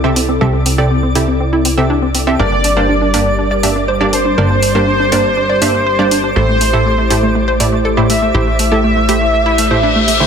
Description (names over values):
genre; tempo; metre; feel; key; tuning
progressive house; 121 BPM; 4/4; straight; unclear; A4 = 440 Hz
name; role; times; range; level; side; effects
airy breathy pad; sustained chords; 0.0-10.3 s; C3 to D5; -20 LUFS; left 1 dB; chorus
analog pluck; arpeggios; 0.0-10.3 s; A3 to D5; -19 LUFS; equal; chorus, digital delay
wide unison pluck; stabs; 0.0-10.3 s; G2 to E5; -17 LUFS; right 2 dB; cassette tape, digital delay
plucky analog bass; bass; 0.0-10.3 s; G1 to C2; -18 LUFS; equal; none
twinkling granular texture; texture; 0.0-10.3 s; D5 to D6; -27 LUFS; equal; built-in reverb
electronic hi-hat; drums; 0.2-10.2 s; none; -19 LUFS; right 2 dB; overdrive
soft supersaw; melody; 2.4-10.2 s; C5 to E5; -15 LUFS; right 1 dB; digital delay
reverse cymbal; sound effects; 9.5-10.3 s; none; -17 LUFS; left 7 dB; none
room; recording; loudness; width
light reverb, digital ambience; none; -11 LUFS; side -7 dB against mid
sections
0.0-10.3 A section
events
filter sweep on synth pluck 0.0-10.3; reverse cymbal 9.5-10.3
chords
0.0 C6; 2.4 Gm; 6.4 Am7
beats
| 0.41 0.91 1.40 1.90 | 2.39 2.89 3.39 3.88 | 4.38 4.87 5.37 5.87 | 6.36 6.86 7.35 7.85 | 8.35 8.84 9.34 9.83